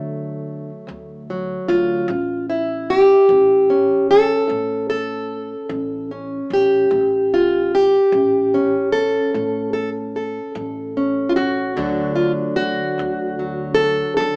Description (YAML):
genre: acoustic country blues, solo or duo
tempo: 50 BPM (dotted quarters)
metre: 12/8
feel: straight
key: unclear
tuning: A4 = 440 Hz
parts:
  - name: fingerpicked plugged-in steel-string acoustic guitar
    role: melody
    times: 0.0-14.4 s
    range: D2 to A4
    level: -19 LUFS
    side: equal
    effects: none
  - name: upright bass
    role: bass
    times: 0.0-14.4 s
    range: A1 to D3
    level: -32 LUFS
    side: equal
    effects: none
room: wet studio reverb, RT60 0.6 s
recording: band playing live in one room, small speaker sound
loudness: -19 LUFS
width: mono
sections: 0.0-14.4 A section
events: none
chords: 0.0 D; 2.1 A; 11.8 D